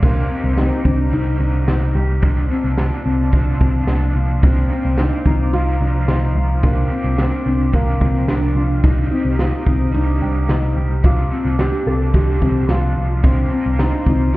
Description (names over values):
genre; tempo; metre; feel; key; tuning
dream pop; 109 BPM; 4/4; straight; C dorian; A4 = 439 Hz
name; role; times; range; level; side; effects
felt-muted upright piano; melody; 0.0-14.4 s; Bb3 to A4; -24 LUFS; equal; ping-pong delay
crunchy overdriven guitar; accompaniment; 0.0-14.4 s; C3 to Bb4; -30 LUFS; right 2 dB; tremolo, analog chorus
warbly tape-like pad; sustained chords; 0.0-14.4 s; Bb3 to Eb6; -31 LUFS; equal; chorus, built-in reverb
mellow electric guitar; arpeggios; 0.0-14.4 s; C4 to G4; -24 LUFS; left 2 dB; analog chorus, ping-pong delay
vintage muted picked electric bass; bass; 0.0-14.4 s; C2; -18 LUFS; equal; none
raw garage drum kit; drums; 0.0-14.4 s; crash cymbal, kick drum, ride cymbal, snare drum, tambourine; -19 LUFS; equal; none
soft synth bell; texture; 0.0-0.7, 5.3-14.4 s; G5 to D6; -37 LUFS; equal; chorus, ping-pong delay
room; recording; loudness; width
small room reverb; heard muffled through a wall, stone room reverb, EQ; -15 LUFS; side -18 dB against mid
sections
0.0-14.4 A section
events
none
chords
0.0 Cm7; 2.2 Bbmaj7/C; 4.4 Fsus4/C; 6.6 Gm7/C; 8.8 Cm7; 11.0 Bbmaj7/C; 13.2 Gm7/C (rootless)